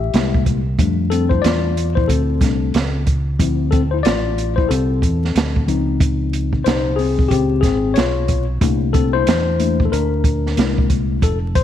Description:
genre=hip hop, jazz-hop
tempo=92 BPM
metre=4/4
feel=swing 61% on 16ths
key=F major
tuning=A4 = 440 Hz
part: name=tine electric piano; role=accompaniment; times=0.0-11.6 s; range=F3 to E5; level=-20 LUFS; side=left 7 dB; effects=overdrive, fast stereo tremolo
part: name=deep dub fingered electric bass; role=bass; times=0.0-11.6 s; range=F1 to F2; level=-20 LUFS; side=equal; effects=none
part: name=open jazz drum kit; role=drums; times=0.1-11.6 s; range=hi-hat, kick drum, snare drum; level=-19 LUFS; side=right 2 dB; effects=none
room=light reverb, small room ambience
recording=1960s-style stereo, vinyl crackle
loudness=-15 LUFS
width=side -10 dB against mid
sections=0.0-11.2 A section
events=tine electric piano solo 0.0-11.2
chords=0.1 C7b13; 0.8 F6; 3.4 Dm9; 5.7 Dbmaj9; 8.6 C13; 10.6 Caug7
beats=0.14 | 0.79 1.44 2.09 2.75 | 3.40 4.05 4.70 5.35 | 6.01 6.66 7.31 7.96 | 8.62 9.27 9.92 10.57 | 11.22

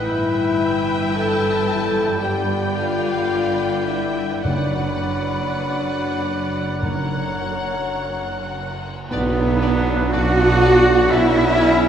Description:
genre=classical, slow romantic movement for symphony orchestra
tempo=50-64 BPM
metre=4/4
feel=rubato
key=B minor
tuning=A4 = 440 Hz
part: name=warm studio violin section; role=melody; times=0.0-11.7 s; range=D5 to G5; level=-31 LUFS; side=left 4 dB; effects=none
part: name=mellow hollow concert flute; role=second line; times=0.0-11.9 s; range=D5 to B5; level=-32 LUFS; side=left 1 dB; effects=none
part: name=warm clarinet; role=second line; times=0.0-11.9 s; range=B3 to D5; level=-30 LUFS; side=equal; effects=none
part: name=warm oboe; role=second line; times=0.0-11.9 s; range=B4 to G5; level=-29 LUFS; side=right 1 dB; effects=none
part: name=warm studio violin section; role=second line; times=0.0-11.9 s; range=B4 to A5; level=-32 LUFS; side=left 2 dB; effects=none
part: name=mellow bassoon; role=accompaniment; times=0.0-11.9 s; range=D3 to B3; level=-30 LUFS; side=right 1 dB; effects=none
part: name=rich studio viola section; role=accompaniment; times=0.0-11.9 s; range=F#3 to E5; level=-31 LUFS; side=right 1 dB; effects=none
part: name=mellow French horn section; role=sustained chords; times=0.0-11.9 s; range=B3 to A4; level=-24 LUFS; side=left 3 dB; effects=none
part: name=warm studio cello section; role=bass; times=0.0-11.9 s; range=F#2 to F#4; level=-22 LUFS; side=right 1 dB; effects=none
part: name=warm studio double bass section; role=bass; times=0.0-11.9 s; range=F#1 to B1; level=-26 LUFS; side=right 2 dB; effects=none
part: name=cymbal swell and tam-tam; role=percussion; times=4.4-11.9 s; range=none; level=-31 LUFS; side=left 1 dB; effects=none
part: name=timpani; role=percussion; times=4.4-8.5 s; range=F#2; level=-28 LUFS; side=equal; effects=none
part: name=mellow trombone section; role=sustained chords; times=9.1-11.9 s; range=F#3 to D4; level=-29 LUFS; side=right 2 dB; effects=none
part: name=warm trumpet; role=stabs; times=9.1-11.9 s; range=F#3 to D4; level=-28 LUFS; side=right 1 dB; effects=none
part: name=mellow tuba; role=bass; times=9.1-11.9 s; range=B1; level=-25 LUFS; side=right 2 dB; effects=none
room=wet church reverb, RT60 3.2 s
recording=none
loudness=-17 LUFS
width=side -8 dB against mid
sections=0.0-9.1 A section; 9.1-11.9 B section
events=band accent 9.1-10.1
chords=0.0 Em/G; 2.2 G7; 4.4 Bm/F#; 6.8 F#; 9.1 Bm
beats=| 0.04 1.15 2.22 3.29 | 4.45 5.63 6.83 7.99 | 9.11 10.13 11.10

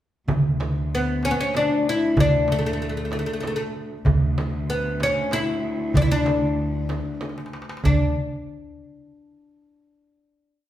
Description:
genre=Arabic maqam ensemble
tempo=95 BPM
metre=3/4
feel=straight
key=unclear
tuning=A4 = 441 Hz
part: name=upright bass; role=bass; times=0.3-8.1 s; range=D2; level=-25 LUFS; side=right 1 dB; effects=none
part: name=clear cello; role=drone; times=0.3-7.9 s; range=D2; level=-33 LUFS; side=left 1 dB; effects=none
part: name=darbuka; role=percussion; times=0.3-8.1 s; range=none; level=-27 LUFS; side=equal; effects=none
part: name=frame drum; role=percussion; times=0.3-8.1 s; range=none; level=-26 LUFS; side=right 2 dB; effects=none
part: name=oud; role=melody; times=0.9-8.1 s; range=A3 to E4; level=-24 LUFS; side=left 2 dB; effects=none
room=wet large studio reverb, RT60 1.2 s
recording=band playing live in one room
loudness=-20 LUFS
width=side -12 dB against mid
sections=0.3-7.8 A section; 7.8-9.7 final note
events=drum fill 7.2-7.8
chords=none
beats=| 0.28 0.91 1.54 | 2.17 2.80 3.43 | 4.06 4.69 5.32 | 5.95 6.58 7.21 | 7.84

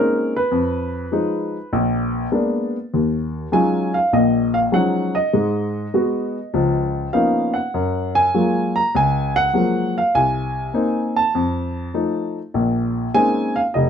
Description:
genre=solo jazz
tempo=100 BPM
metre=4/4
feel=swing 69% on 8ths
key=Bb minor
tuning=A4 = 441 Hz
part: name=warm baby grand piano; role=solo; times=0.0-13.9 s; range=F1 to Bb5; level=-17 LUFS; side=equal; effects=none
room=light reverb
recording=none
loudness=-17 LUFS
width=side -8 dB against mid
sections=0.0-13.9 A section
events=none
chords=0.0 Bbm11; 0.5 Fm7b5; 1.7 Bb7b9; 2.9 Ebm11; 5.3 Abm7; 6.5 Db13; 7.7 Gbmaj9; 10.1 Abadd9/C; 11.3 F7; 12.5 Bbm11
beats=| 0.52 1.12 1.72 2.32 | 2.92 3.52 4.13 4.73 | 5.33 5.93 6.53 7.13 | 7.74 8.34 8.94 9.54 | 10.14 10.74 11.35 11.95 | 12.55 13.15 13.75

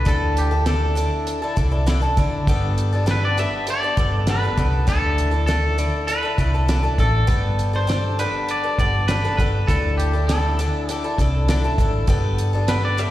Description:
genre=folk rock and heartland rock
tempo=100 BPM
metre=4/4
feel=straight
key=G major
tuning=A4 = 440 Hz
part: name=twangy electric guitar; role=melody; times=0.0-13.1 s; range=G4 to E5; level=-25 LUFS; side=right 1 dB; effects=slapback echo
part: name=picked twelve-string acoustic guitar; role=accompaniment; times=0.0-13.1 s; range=D3 to A4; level=-24 LUFS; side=left 2 dB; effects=slapback echo
part: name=hollow-body short-scale fingered electric bass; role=bass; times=0.1-13.1 s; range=G1 to D3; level=-20 LUFS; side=equal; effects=none
part: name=damped 70s drum kit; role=drums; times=0.1-13.1 s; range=hi-hat, kick drum, snare drum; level=-23 LUFS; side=equal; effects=none
room=studio ambience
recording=live gig heard through the venue's PA, recital hall reverb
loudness=-18 LUFS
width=side -14 dB against mid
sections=0.0-13.1 A section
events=none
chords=0.1 Dsus2; 2.5 Gadd9; 4.9 Dsus2; 7.3 Gadd9; 9.7 Dsus2; 12.1 Gadd9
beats=| 0.07 0.67 1.27 1.87 | 2.47 3.07 3.67 4.28 | 4.88 5.48 6.08 6.68 | 7.28 7.88 8.48 9.08 | 9.68 10.28 10.88 11.48 | 12.09 12.69

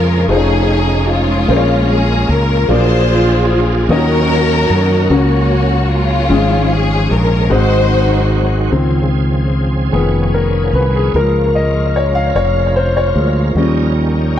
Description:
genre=gospel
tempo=50 BPM (dotted quarters)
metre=6/8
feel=straight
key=Db major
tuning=A4 = 440 Hz
part: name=warm studio string section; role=melody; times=0.0-8.7 s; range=G#3 to C5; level=-16 LUFS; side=left 1 dB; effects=tape echo
part: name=warm upright piano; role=accompaniment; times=0.0-14.4 s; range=Ab2 to F5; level=-17 LUFS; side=left 2 dB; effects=tape echo
part: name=bright tonewheel organ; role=sustained chords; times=0.0-14.4 s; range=Db3 to Bb4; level=-22 LUFS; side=right 2 dB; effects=slow rotary speaker, overdrive, chorus vibrato
part: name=mellow fretless electric bass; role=bass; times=0.0-14.4 s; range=F1 to Gb2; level=-15 LUFS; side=equal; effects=none
room=light reverb, small room ambience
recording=echo-heavy mix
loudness=-11 LUFS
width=side -10 dB against mid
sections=0.0-8.7 A section; 8.7-14.4 B section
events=upright piano solo 8.7-14.4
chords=0.3 F7alt; 1.5 Bbm7; 2.7 Bb7b13; 3.9 Ebm7; 5.1 Gb/Db; 6.3 Db/Ab; 7.5 Ab7; 8.7 Dbmaj7; 9.9 Db7/F; 11.1 Bbm11; 13.6 Eb7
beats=0.28 | 1.49 2.69 | 3.90 5.10 | 6.31 7.52 | 8.73 9.93 | 11.14 12.35 | 13.56

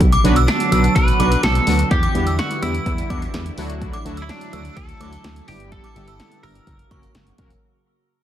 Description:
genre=synth-pop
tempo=126 BPM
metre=4/4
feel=straight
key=B minor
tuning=A4 = 440 Hz
part: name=sweeping resonant pad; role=sustained chords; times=0.0-7.6 s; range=C#3 to F#4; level=-27 LUFS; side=right 2 dB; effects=chorus
part: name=solid FM bass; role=bass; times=0.0-7.6 s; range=E1 to E2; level=-20 LUFS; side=equal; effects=none
part: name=punchy analog drum machine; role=drums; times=0.0-7.6 s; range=hi-hat, kick drum, snare drum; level=-21 LUFS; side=equal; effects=none
part: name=synth chime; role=second line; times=0.1-7.0 s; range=C#6 to E6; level=-26 LUFS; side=right 2 dB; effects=ensemble chorus, tape echo
part: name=analog synth brass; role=accompaniment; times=0.2-7.5 s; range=F#3 to B4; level=-25 LUFS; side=equal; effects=chorus
part: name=clean electric guitar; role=melody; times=0.5-7.1 s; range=D4 to B4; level=-24 LUFS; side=right 1 dB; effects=lush chorus, tape echo
room=light reverb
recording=dense, heavily limited modern master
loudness=-16 LUFS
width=side -11 dB against mid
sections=0.0-7.6 A section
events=fade-out 0.0-7.6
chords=0.0 Bm; 1.9 Em7; 3.6 Dadd9; 5.5 G6; 6.7 F#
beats=| 0.01 0.48 0.96 1.43 | 1.91 2.39 2.86 3.34 | 3.81 4.29 4.77 5.24 | 5.72 6.20 6.67 7.15

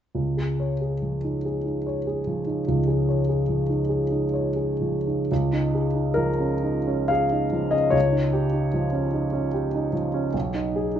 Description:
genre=classical, impressionist solo piano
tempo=58-76 BPM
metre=3/4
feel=rubato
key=Db lydian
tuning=A4 = 437 Hz
part: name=warm grand piano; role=solo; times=0.1-11.0 s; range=Cb2 to F5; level=-22 LUFS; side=equal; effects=none
room=moderate large studio reverb, RT60 1.3 s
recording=nothing above 7.8 kHz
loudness=-22 LUFS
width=side -9 dB against mid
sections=0.1-5.3 A section; 5.3-11.0 B section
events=none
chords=0.1 Dbadd9; 7.9 Eb9/Db; 10.3 Cb6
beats=| 0.15 1.02 1.85 | 2.67 3.48 4.33 | 5.30 6.16 7.11 | 7.95 8.75 9.55 | 10.35

